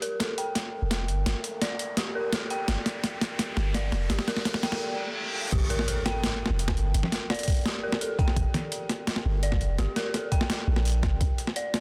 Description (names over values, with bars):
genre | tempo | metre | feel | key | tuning
half-time drum and bass | 169 BPM | 4/4 | half-time | G minor | A4 = 440 Hz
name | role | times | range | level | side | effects
dark detuned synth bell | arpeggios | 0.0-11.8 s | G4 to G5 | -36 LUFS | equal | chorus, vintage 12-bit sampler grit, low-pass filter, dub echo
boom bap sampler-style drum kit | drums | 0.0-11.8 s | crash cymbal, hi-hat, snare drum | -32 LUFS | equal | overdrive
riser, reverse cymbal and impact | sound effects | 1.4-6.9 s | none | -38 LUFS | equal | none
electronic kick drum | drums | 0.2-11.3 s | none | -30 LUFS | equal | overdrive, high-pass filter on kick, high-pass filter on room
long sustained 808-style bass | bass | 0.8-11.3 s | F1 to C2 | -28 LUFS | equal | none
room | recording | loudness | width
light reverb, digital ambience | dense, heavily limited modern master | -28 LUFS | mono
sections
0.0-5.5 A section; 5.5-11.8 B section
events
build-up 0.0-5.5; drum fill 0.0-4.8; filter sweep on synth bell 0.0-5.5; riser 1.4-4.8; break 4.8-5.5; reverse cymbal 4.8-5.5; drop 5.5-11.8; impact 5.5-6.9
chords
0.0 Gm; 11.2 N.C.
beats
0.20 0.56 0.91 | 1.26 1.62 1.98 2.33 | 2.69 3.04 3.40 3.75 | 4.11 4.46 4.82 5.17 | 5.53 5.88 6.24 6.59 | 6.95 7.30 7.66 8.01 | 8.37 8.72 9.07 9.43 | 9.79 10.14 10.49 10.85 | 11.21 11.56